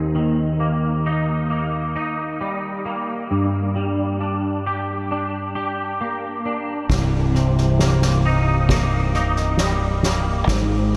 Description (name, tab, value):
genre	post-rock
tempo	67 BPM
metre	4/4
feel	straight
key	C minor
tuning	A4 = 441 Hz
part	twangy electric guitar	arpeggios	0.0-11.0 s	C2 to G4	-23 LUFS	equal	ensemble chorus, delay
part	growling fingered electric bass	bass	6.9-11.0 s	C1 to Ab1	-24 LUFS	equal	overdrive
part	soft-mallet drum kit	drums	6.9-11.0 s	crash cymbal, kick drum, snare drum	-26 LUFS	equal	none
room	wet huge ambient reverb, RT60 6.4 s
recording	dreamy mix soaked in reverb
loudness	-21 LUFS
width	mono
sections	0.0-6.9 A section; 6.9-11.0 A section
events	none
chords	0.0 Eb; 3.3 Gm; 6.9 Cm7